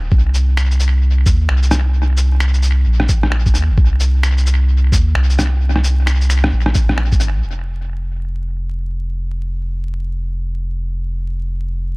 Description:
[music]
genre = future garage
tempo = 131 BPM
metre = 4/4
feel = swing 62% on 16ths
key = unclear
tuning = A4 = 438 Hz
[part]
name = soft dub sub bass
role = bass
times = 0.0-12.0 s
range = F1 to Eb2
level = -15 LUFS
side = equal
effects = tube saturation, sidechain pumping
[part]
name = electronic kick drum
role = drums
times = 0.1-7.2 s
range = none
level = -14 LUFS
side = equal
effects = small room ambience
[part]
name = electronic shaker, finger snaps and rim click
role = drums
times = 0.3-7.3 s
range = none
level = -22 LUFS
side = equal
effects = low-pass filter on snare, small room ambience, low-pass filter on perc, tape echo
[sound]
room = little or no reverb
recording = echo-heavy mix, vinyl crackle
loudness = -14 LUFS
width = side -27 dB against mid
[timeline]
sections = 0.0-7.4 A section; 7.4-12.0 B section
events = none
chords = none

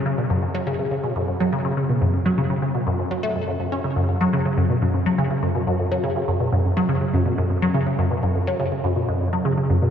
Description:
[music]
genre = ambient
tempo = 123 BPM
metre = 4/4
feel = straight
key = unclear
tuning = A4 = 438 Hz
[part]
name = resonant blip pluck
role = solo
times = 0.0-9.9 s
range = F#2 to C#4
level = -19 LUFS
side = equal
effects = phaser, wide subtle chorus, tape echo
[sound]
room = wet cathedral reverb, RT60 5.3 s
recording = in a vast, echoing space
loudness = -19 LUFS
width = side -8 dB against mid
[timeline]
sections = 0.0-9.9 A section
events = none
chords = none

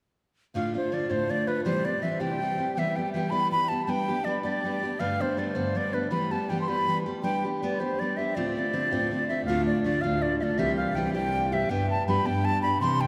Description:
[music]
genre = celtic folk, Celtic jig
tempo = 108 BPM (dotted quarters)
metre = 6/8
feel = straight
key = D dorian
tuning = A4 = 440 Hz
[part]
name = picked steel-string acoustic guitar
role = accompaniment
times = 0.5-13.1 s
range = D2 to G4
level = -31 LUFS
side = equal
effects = none
[part]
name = bright wooden flute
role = melody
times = 0.6-13.1 s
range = B4 to C6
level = -30 LUFS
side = equal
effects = none
[part]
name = muted cello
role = bass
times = 9.4-13.1 s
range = C2 to C3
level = -32 LUFS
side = equal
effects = none
[sound]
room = wet cathedral reverb, RT60 5.0 s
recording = recorded in a church or concert hall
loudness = -27 LUFS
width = mono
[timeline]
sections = 0.5-9.5 A section; 9.5-13.1 B section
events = none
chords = 0.5 Dm; 1.7 C; 2.8 Em; 3.9 G; 5.0 Gadd9; 6.1 Em; 7.2 G; 8.3 Dm7; 9.5 Dm; 10.6 C; 11.7 G

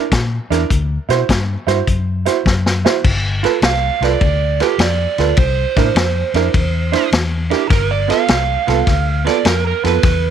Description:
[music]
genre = electric blues shuffle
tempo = 103 BPM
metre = 4/4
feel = swing 67% on 8ths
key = G mixolydian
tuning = A4 = 439 Hz
[part]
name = warm concert grand piano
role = accompaniment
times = 0.0-9.9 s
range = B3 to C5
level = -19 LUFS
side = right 13 dB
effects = none
[part]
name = vintage muted fingered electric bass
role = bass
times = 0.1-10.3 s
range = G1 to B2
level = -18 LUFS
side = left 2 dB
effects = none
[part]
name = vintage drum kit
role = drums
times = 0.1-10.2 s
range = crash cymbal, hi-hat, kick drum, ride cymbal, snare drum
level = -18 LUFS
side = left 2 dB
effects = none
[part]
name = overdriven slide guitar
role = second line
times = 3.7-10.3 s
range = G4 to F5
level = -19 LUFS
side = right 10 dB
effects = none
[sound]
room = small room ambience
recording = 1960s-style stereo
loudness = -13 LUFS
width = side -8 dB against mid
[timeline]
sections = 0.0-3.0 A section; 3.0-10.3 B section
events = drum fill 2.5-3.0; electric slide guitar solo 3.0-10.3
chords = 0.0 C7 (rootless); 0.7 D7 (rootless); 3.0 G7; 5.4 C7; 7.7 G7

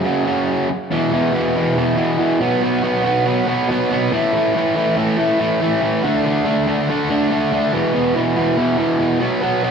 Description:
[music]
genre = rock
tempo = 141 BPM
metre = 4/4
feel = straight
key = unclear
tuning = A4 = 439 Hz
[part]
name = distorted electric guitar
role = solo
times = 0.0-9.7 s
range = E2 to D4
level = -15 LUFS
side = right 1 dB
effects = distortion, analog delay
[sound]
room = moderate plate reverb, RT60 2.8 s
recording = studio reverb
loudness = -15 LUFS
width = side -6 dB against mid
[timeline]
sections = 0.9-9.7 A section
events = none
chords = 0.0 F#5; 0.9 E5; 2.4 B5; 4.1 A5; 6.0 D5; 7.7 E5

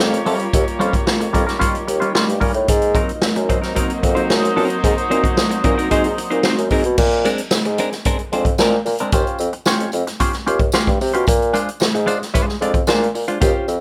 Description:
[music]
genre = funk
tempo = 112 BPM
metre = 4/4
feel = straight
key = unclear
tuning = A4 = 440 Hz
[part]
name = warm horn section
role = second line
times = 0.0-6.7 s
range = Gb3 to Db5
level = -27 LUFS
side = equal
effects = none
[part]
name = soft string machine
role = sustained chords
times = 0.1-7.0 s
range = Gb3 to D5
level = -30 LUFS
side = equal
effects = ensemble chorus
[part]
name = mellow bassoon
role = bass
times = 0.0-13.8 s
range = Eb2 to Ab3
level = -22 LUFS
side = equal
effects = none
[part]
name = semi-hollow electric guitar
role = accompaniment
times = 0.1-13.7 s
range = Gb3 to D5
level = -24 LUFS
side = equal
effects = phaser
[part]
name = swinging big-band drum kit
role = drums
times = 0.1-13.8 s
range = crash cymbal, hi-hat, kick drum, snare drum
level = -22 LUFS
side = equal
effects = none
[part]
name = tambourine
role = percussion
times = 7.0-13.8 s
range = none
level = -35 LUFS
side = equal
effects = none
[sound]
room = light reverb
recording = none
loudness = -18 LUFS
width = mono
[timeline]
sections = 0.0-7.0 A section; 7.0-13.8 B section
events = none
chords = 0.0 Eb9; 2.7 Ab9; 7.0 Bb9; 9.1 Eb13; 11.3 Bb9

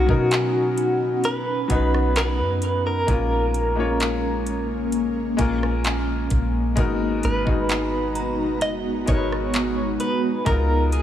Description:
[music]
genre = contemporary R&B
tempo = 65 BPM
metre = 4/4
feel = straight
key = G# dorian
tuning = A4 = 440 Hz
[part]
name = direct-recorded clean electric guitar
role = melody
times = 0.0-11.0 s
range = F#4 to D#5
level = -25 LUFS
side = equal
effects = tremolo, digital delay
[part]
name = clear grand piano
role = accompaniment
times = 0.0-11.0 s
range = F#3 to C#5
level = -27 LUFS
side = left 4 dB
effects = none
[part]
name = ethereal airy pad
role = sustained chords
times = 0.0-11.0 s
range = C#3 to A#5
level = -27 LUFS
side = equal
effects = ensemble chorus, built-in reverb, tremolo
[part]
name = soft 808-style bass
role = bass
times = 0.0-11.0 s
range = F#1 to B2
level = -25 LUFS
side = equal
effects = none
[part]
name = smooth R&B drum kit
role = drums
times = 0.1-11.0 s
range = handclaps, hi-hat, kick drum, rim click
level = -26 LUFS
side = equal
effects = none
[part]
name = synth chime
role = texture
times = 0.3-9.8 s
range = F#5 to A#5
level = -39 LUFS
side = right 2 dB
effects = ensemble chorus, digital delay
[sound]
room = light reverb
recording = small room ambience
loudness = -20 LUFS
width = side -11 dB against mid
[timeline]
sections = 0.0-11.0 A section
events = none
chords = 0.0 Bmaj7; 3.1 A#m7; 6.8 G#m9; 10.5 C#13

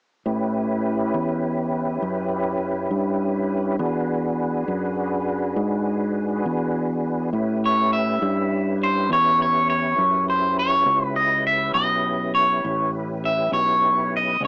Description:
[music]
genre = slow blues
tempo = 68 BPM (dotted quarters)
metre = 12/8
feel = straight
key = A mixolydian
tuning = A4 = 439 Hz
[part]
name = tonewheel organ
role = sustained chords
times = 0.3-14.5 s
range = C4 to B4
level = -28 LUFS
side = equal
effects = slow rotary speaker, chorus vibrato, cassette tape
[part]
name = fingered electric bass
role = bass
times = 0.3-14.5 s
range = A1 to A2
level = -28 LUFS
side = equal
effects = none
[part]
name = electric guitar at the edge of break-up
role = melody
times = 7.7-14.5 s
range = C5 to E5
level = -22 LUFS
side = equal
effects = phaser
[sound]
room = light reverb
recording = home recording on cassette, small speaker sound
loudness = -22 LUFS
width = mono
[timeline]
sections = 0.3-7.3 A section; 7.3-14.5 B section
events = none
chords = 0.3 A7; 3.8 E7; 7.3 A9

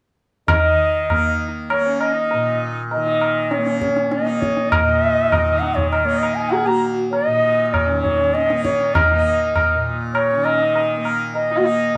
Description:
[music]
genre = indian classical, Hindustani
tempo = 99 BPM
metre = 7/4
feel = straight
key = unclear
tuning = A4 = 441 Hz
[part]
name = bright reedy bansuri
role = melody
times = 0.5-12.0 s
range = Db5 to Bb5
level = -21 LUFS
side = equal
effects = none
[part]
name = tanpura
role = drone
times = 0.5-12.0 s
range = Bb2 to Bb3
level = -27 LUFS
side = equal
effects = none
[part]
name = tabla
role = percussion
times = 0.5-11.6 s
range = none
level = -23 LUFS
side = equal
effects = none
[part]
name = warm sarangi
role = second line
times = 0.6-12.0 s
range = Db4 to Ab4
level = -28 LUFS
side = equal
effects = none
[sound]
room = wet small room ambience, RT60 0.5 s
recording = band playing live in one room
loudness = -19 LUFS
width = mono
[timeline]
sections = 0.5-12.0 A section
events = none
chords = none

